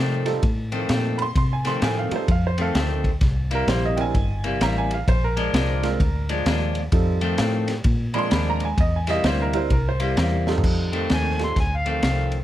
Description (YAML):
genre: electric blues shuffle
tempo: 129 BPM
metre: 4/4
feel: swing 63% on 8ths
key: F mixolydian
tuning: A4 = 440 Hz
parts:
  - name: clean electric guitar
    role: riff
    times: 0.0-12.4 s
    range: F2 to E4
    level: -26 LUFS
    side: left 2 dB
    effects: none
  - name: vintage muted fingered electric bass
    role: bass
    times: 0.0-12.4 s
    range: G1 to C3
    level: -24 LUFS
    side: equal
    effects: none
  - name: warm baby grand piano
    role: accompaniment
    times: 0.3-11.6 s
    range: G3 to Bb4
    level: -28 LUFS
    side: right 6 dB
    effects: none
  - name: crunchy breakbeat drum kit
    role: drums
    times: 0.3-12.4 s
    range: crash cymbal, kick drum, ride cymbal, snare drum, toms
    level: -24 LUFS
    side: equal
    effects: none
  - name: clear upright piano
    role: second line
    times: 1.2-10.6 s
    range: A4 to C6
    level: -28 LUFS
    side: right 3 dB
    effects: none
  - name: overdriven harmonica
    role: melody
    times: 11.1-12.3 s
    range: F5 to C6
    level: -27 LUFS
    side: equal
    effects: none
room: little or no reverb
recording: none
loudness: -19 LUFS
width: side -13 dB against mid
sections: 0.0-10.6 A section; 10.6-12.4 B section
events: upright piano solo 0.0-10.6; drum fill 10.4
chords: 0.0 F7; 3.2 C7; 5.1 Bb7; 6.9 F7; 7.9 Bb7; 8.8 C7; 10.6 F7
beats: 0.43 0.89 | 1.36 1.82 2.28 2.75 | 3.21 3.68 4.14 4.61 | 5.07 5.53 6.00 6.46 | 6.92 7.39 7.85 8.32 | 8.78 9.24 9.71 10.17 | 10.63 11.10 11.56 12.03